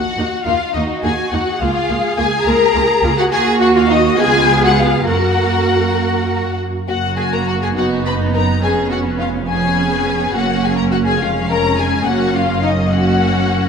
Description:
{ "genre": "quick classical-period movement for string orchestra", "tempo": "70 BPM (dotted quarters)", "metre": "6/8", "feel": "straight", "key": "F# major from 3.3 s", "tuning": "A4 = 440 Hz", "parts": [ { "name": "dark symphonic violin section", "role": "melody", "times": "0.0-13.7 s", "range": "Eb5 to B5", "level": "-20 LUFS", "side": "left 6 dB", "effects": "none" }, { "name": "rich symphonic violin section", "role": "second line", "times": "0.0-13.7 s", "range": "Eb4 to B4", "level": "-20 LUFS", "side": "left 2 dB", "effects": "none" }, { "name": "rich symphonic viola section", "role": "accompaniment", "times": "0.2-13.7 s", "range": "G#3 to F#4", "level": "-20 LUFS", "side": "right 3 dB", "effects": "none" }, { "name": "rich symphonic double bass section", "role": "bass", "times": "0.2-13.7 s", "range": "E#1 to F#2", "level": "-21 LUFS", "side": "right 2 dB", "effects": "none" }, { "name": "warm symphonic cello section", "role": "bass", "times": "0.8-13.7 s", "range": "E#2 to A#4", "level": "-21 LUFS", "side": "right 2 dB", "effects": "none" } ], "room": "wet scoring stage reverb, RT60 2.1 s", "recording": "none", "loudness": "-13 LUFS", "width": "side -6 dB against mid", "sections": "0.0-6.9 A section; 6.9-13.7 B section", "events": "none", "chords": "0.0 Ebm; 1.6 Bbm/Db; 3.3 D#m; 4.2 C#7; 5.1 F#; 7.8 B/F#; 8.6 C#7/E#; 10.3 F#; 11.2 C#/E#; 12.1 F#" }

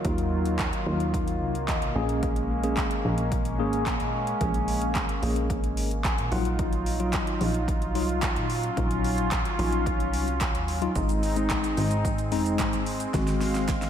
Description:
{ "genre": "dance-pop", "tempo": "110 BPM", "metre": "4/4", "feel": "straight", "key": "Eb dorian", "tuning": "A4 = 442 Hz", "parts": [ { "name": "mellow tine electric piano", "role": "accompaniment", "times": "0.0-13.6 s", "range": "Gb3 to Ab5", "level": "-30 LUFS", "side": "left 2 dB", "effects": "medium stereo tremolo, sidechain pumping" }, { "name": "warm analog pad", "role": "sustained chords", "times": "0.0-13.9 s", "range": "Eb3 to F5", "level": "-31 LUFS", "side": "equal", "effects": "chorus, sidechain pumping" }, { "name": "plucky analog bass", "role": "bass", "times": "0.0-13.8 s", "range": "F1 to Bb2", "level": "-29 LUFS", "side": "equal", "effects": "sidechain pumping" }, { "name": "deep house drum kit", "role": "drums", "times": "0.0-13.9 s", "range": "handclaps, hi-hat, kick drum, shaker, snare drum", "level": "-29 LUFS", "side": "equal", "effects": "overdrive" }, { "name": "group handclap", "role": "percussion", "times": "7.1-13.8 s", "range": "none", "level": "-43 LUFS", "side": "right 4 dB", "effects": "none" } ], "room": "moderate lush hall reverb, RT60 1.8 s", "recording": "dreamy mix soaked in reverb", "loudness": "-24 LUFS", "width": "side -9 dB against mid", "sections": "0.0-13.9 A section", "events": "tine electric piano fill 1.4-2.2, 5.8-6.6; drum fill 13.1-13.9", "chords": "0.0 Ebmadd9; 2.0 Bbm7; 6.3 Ebmadd9/Bb; 11.0 Ab" }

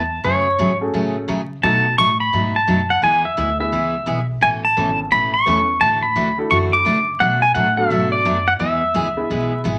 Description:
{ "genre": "country, western swing", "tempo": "172 BPM", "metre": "4/4", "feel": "swing 64% on 8ths", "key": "unclear", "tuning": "A4 = 440 Hz", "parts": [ { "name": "pedal steel guitar", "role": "melody", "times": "0.0-9.6 s", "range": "C#5 to D6", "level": "-19 LUFS", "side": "equal", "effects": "none" }, { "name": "upright bass", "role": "bass", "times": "0.0-9.8 s", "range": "G#1 to C#3", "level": "-28 LUFS", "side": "equal", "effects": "none" }, { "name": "picked steel-string acoustic guitar", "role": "accompaniment", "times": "0.2-9.8 s", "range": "B2 to A4", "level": "-25 LUFS", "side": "equal", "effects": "none" }, { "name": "clear upright piano", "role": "accompaniment", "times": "0.8-9.6 s", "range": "F#3 to B4", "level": "-27 LUFS", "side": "equal", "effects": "none" } ], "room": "wet club reverb, RT60 0.7 s", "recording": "vinyl crackle", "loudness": "-18 LUFS", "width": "mono", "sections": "0.0-9.8 A section", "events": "none", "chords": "0.2 F#madd9; 1.6 B7; 3.0 E; 4.4 Aadd9; 5.8 Dadd9; 7.2 Bm7; 8.6 E" }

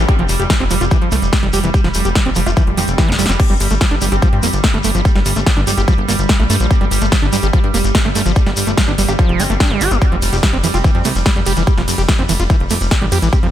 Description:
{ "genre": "psychedelic trance", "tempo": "145 BPM", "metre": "4/4", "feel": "straight", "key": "unclear", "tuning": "A4 = 440 Hz", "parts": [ { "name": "pulsing gated texture", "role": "sustained chords", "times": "0.0-13.5 s", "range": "G3", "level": "-22 LUFS", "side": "right 2 dB", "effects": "chorus, built-in reverb, sidechain pumping" }, { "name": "overdriven acid bass", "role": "riff", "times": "0.0-13.5 s", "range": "E3 to G4", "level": "-21 LUFS", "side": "right 1 dB", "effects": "distortion, auto-pan, sidechain pumping, tape echo" }, { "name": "plucky analog bass", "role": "bass", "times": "0.0-13.5 s", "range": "F1 to G2", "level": "-18 LUFS", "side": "equal", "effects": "none" }, { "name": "metallic wobble bass", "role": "second line", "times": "0.1-13.5 s", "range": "A3 to C4", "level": "-29 LUFS", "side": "right 2 dB", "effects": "wide subtle chorus, sidechain pumping, high-pass filter, dub echo" }, { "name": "big-room dance drum kit", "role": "drums", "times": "0.1-13.5 s", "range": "crash cymbal, hi-hat, ride cymbal, snare drum", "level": "-21 LUFS", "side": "equal", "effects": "none" }, { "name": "electronic kick drum", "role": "drums", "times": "0.1-13.4 s", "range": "none", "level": "-14 LUFS", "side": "equal", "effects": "none" }, { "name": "shekere", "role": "percussion", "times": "0.1-13.4 s", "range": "none", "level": "-26 LUFS", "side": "left 4 dB", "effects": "none" }, { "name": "swell", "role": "sound effects", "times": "2.7-3.4 s", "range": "none", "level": "-28 LUFS", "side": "right 2 dB", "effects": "none" } ], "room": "digital ambience", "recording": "none", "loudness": "-12 LUFS", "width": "side -11 dB against mid", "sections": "0.0-13.5 A section", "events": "swell 2.7-3.4; drum fill 3.0-3.4", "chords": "0.0 F5; 3.4 G5; 10.0 F5" }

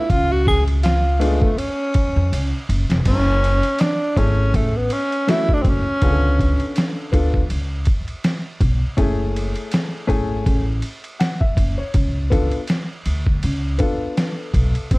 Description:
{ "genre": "hip hop, jazz-hop", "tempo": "81 BPM", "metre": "4/4", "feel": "swing 57% on 16ths", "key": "F# minor", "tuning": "A4 = 440 Hz", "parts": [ { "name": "breathy tenor saxophone", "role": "melody", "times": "0.0-7.2, 14.9-15.0 s", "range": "G#3 to G#4", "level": "-21 LUFS", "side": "equal", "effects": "slapback echo" }, { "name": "upright bass", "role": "bass", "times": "0.1-15.0 s", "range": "E#1 to E#2", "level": "-20 LUFS", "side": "equal", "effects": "none" }, { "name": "trip hop sampler-style drum kit", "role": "drums", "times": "0.1-15.0 s", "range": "crash cymbal, hi-hat, kick drum, ride cymbal, snare drum", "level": "-21 LUFS", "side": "equal", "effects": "none" }, { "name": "warm upright piano", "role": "accompaniment", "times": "1.2-14.8 s", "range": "D3 to F#5", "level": "-25 LUFS", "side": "left 2 dB", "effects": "none" } ], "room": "light reverb", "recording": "dark, warm production, vinyl crackle", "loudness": "-17 LUFS", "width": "side -23 dB against mid", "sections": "0.0-3.1 A section; 3.1-15.0 B section", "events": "tenor saxophone solo 0.0-3.1; drum fill 2.3-3.1", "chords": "0.1 C#; 3.1 F#m7; 6.0 C#7b9b13; 9.0 F#m7; 11.9 C#7b9b13" }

